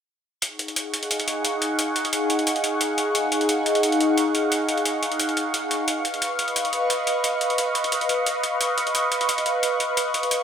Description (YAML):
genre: liquid drum and bass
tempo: 176 BPM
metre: 4/4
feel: straight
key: Eb minor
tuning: A4 = 441 Hz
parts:
  - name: lush unison pad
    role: sustained chords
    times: 0.7-10.4 s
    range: Eb4 to Db6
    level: -22 LUFS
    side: equal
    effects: chorus, phaser
  - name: electronic hi-hat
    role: drums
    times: 0.4-10.4 s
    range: none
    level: -26 LUFS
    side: equal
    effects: studio reverb
room: moderate huge ambient reverb, RT60 4.2 s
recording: none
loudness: -20 LUFS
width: side -8 dB against mid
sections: 0.4-10.4 A section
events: none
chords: 0.4 Ebm11; 5.9 Db9